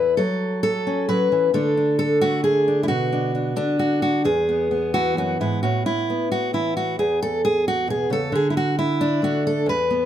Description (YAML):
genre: folk, solo fingerstyle acoustic guitar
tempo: 133 BPM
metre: 3/4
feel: straight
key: A major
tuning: A4 = 440 Hz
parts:
  - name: fingerpicked steel-string acoustic guitar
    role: solo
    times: 0.0-10.1 s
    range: E2 to B4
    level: -19 LUFS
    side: equal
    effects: none
room: light reverb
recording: close, detailed microphones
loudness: -19 LUFS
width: side -10 dB against mid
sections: 0.0-5.6 A section; 5.6-10.1 B section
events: none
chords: 0.2 F#m; 1.6 D5; 2.9 Bm; 4.3 E; 5.6 Asus2; 7.0 E5; 8.3 D5